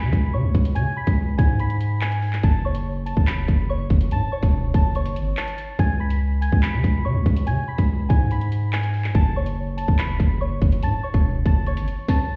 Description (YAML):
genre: hip hop, drill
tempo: 143 BPM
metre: 4/4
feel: half-time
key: C# minor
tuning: A4 = 440 Hz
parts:
  - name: soft synth bell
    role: melody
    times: 0.0-12.4 s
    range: C#5 to B6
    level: -32 LUFS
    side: equal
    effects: chorus, phaser, low-pass filter, digital delay
  - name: long sustained 808-style bass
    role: bass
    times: 0.0-11.9 s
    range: E1 to C#3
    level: -25 LUFS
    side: equal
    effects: none
  - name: drill drum kit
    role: drums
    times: 0.1-12.2 s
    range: handclaps, hi-hat, kick drum, snare drum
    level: -22 LUFS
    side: equal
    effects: none
room: little or no reverb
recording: heard muffled through a wall, stone room reverb, EQ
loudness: -22 LUFS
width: mono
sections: 0.0-12.4 A section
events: none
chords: 0.0 C#5; 2.4 F#m; 5.8 C#5; 9.1 F#m7